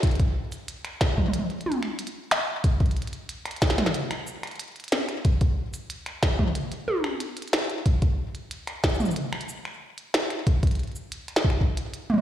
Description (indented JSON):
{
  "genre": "IDM",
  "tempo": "92 BPM",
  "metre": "4/4",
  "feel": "straight",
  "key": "none",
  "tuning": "none",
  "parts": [
    { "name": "electronic kick drum", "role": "drums", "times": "0.0-11.7 s", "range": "none", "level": "-22 LUFS", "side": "equal", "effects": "overdrive" },
    { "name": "glitchy drum kit", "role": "drums", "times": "0.0-12.2 s", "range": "cabasa, finger snaps, hi-hat, snare drum, toms", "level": "-27 LUFS", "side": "equal", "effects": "overdrive, ping-pong delay" }
  ],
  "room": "moderate echo chamber reverb, RT60 1.4 s",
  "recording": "played on a big sound system in a bare room, large studio reverb",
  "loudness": "-24 LUFS",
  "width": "side -11 dB against mid",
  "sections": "0.0-12.2 A section",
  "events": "none",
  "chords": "none"
}